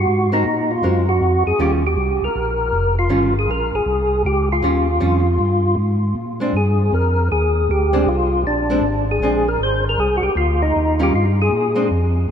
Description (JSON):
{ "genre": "jazz", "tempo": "157 BPM", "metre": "4/4", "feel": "swing 65% on 8ths", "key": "unclear", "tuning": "A4 = 440 Hz", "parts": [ { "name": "percussive tonewheel organ", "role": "melody", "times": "0.0-11.9 s", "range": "D4 to C5", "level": "-18 LUFS", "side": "equal", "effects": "chorus vibrato, slow rotary speaker" }, { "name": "tonewheel organ", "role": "bass", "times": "0.0-12.3 s", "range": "F1 to Bb2", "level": "-20 LUFS", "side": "equal", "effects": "slow rotary speaker" }, { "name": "archtop guitar, miked and amplified", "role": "accompaniment", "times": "0.3-11.9 s", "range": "Eb3 to Bb4", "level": "-24 LUFS", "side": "equal", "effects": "none" } ], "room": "moderate huge ambient reverb, RT60 4.5 s", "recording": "heard from further back in the room", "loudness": "-15 LUFS", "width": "side -8 dB against mid", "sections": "0.0-12.3 A section", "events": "none", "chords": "0.1 Ab9; 1.6 Eb9; 6.2 Bb9; 10.7 Eb9; 11.5 Bb9", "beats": "| 0.07 0.45 0.83 1.21 | 1.59 1.97 2.35 2.73 | 3.11 3.49 3.87 4.25 | 4.64 5.02 5.40 5.78 | 6.16 6.54 6.92 7.31 | 7.69 8.07 8.45 8.83 | 9.21 9.60 9.98 10.36 | 10.74 11.12 11.51 11.89 | 12.27" }